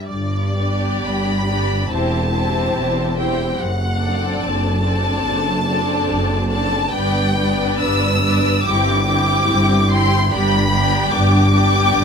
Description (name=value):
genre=classical, slow romantic movement for string orchestra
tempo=72 BPM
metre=4/4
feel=rubato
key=G major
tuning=A4 = 440 Hz
part: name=rich studio violin section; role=melody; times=0.0-12.0 s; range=D5 to E6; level=-22 LUFS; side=left 1 dB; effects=none
part: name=rich studio viola section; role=accompaniment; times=0.0-12.0 s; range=B3 to E4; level=-24 LUFS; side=left 1 dB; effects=none
part: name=rich studio cello section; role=bass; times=0.1-12.0 s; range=E2 to G2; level=-21 LUFS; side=equal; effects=none
part: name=rich studio double bass section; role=bass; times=0.1-12.0 s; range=E1 to G1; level=-22 LUFS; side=right 2 dB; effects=none
part: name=rich studio violin section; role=second line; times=0.5-12.0 s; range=G4 to G5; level=-23 LUFS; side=left 1 dB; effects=none
room=little or no reverb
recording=close, detailed microphones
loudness=-15 LUFS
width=side -6 dB against mid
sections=0.1-12.0 A section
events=none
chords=0.1 G; 1.9 C/E; 3.6 D7/F#; 6.9 G; 8.7 C/G; 10.3 G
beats=| 0.10 1.05 1.90 2.76 | 3.60 4.42 5.26 6.09 | 6.92 7.83 8.66 9.49 | 10.31 11.13 11.96